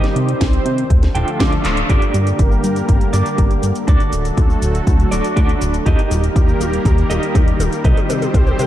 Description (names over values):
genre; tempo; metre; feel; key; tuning
italo disco; 121 BPM; 4/4; straight; G harmonic minor; A4 = 440 Hz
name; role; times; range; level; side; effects
warm analog pad; sustained chords; 0.0-8.7 s; D3 to C5; -21 LUFS; left 1 dB; chorus
clean electric guitar; stabs; 0.0-8.7 s; D4 to G5; -23 LUFS; right 3 dB; tremolo, low-pass filter, ping-pong delay
house drum kit; drums; 0.0-8.7 s; cabasa, handclaps, hi-hat, snare drum, toms; -25 LUFS; left 1 dB; none
chorused synth bass; bass; 0.2-8.7 s; D1 to C3; -18 LUFS; equal; none
electronic kick drum; drums; 0.4-8.4 s; none; -15 LUFS; equal; none
room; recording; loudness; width
light reverb; dark, warm production; -13 LUFS; side -12 dB against mid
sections
0.0-1.9 A section; 1.9-8.7 B section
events
drum fill 1.6, 1.9-8.7; band accent 1.6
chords
0.0 Cm; 0.9 Dm; 1.9 Gm; 3.9 D; 5.9 Eb; 7.8 Cm